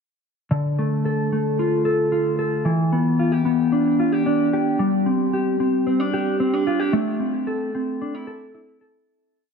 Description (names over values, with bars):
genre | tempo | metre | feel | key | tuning
dream pop | 112 BPM | 4/4 | straight | D dorian | A4 = 436 Hz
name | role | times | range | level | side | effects
mellow electric guitar | solo | 0.5-9.5 s | D3 to A4 | -19 LUFS | equal | wide subtle chorus, tape echo
room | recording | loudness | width
wet huge ambient reverb, RT60 4.0 s | none | -19 LUFS | side -6 dB against mid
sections
0.5-9.1 verse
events
fade-out 6.9-9.1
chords
0.5 Dm; 2.7 Em7; 4.8 Gsus4; 6.9 Am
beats
| 0.52 1.05 1.59 2.12 | 2.66 3.19 3.73 4.27 | 4.80 5.34 5.87 6.41 | 6.94 7.48 8.02 8.55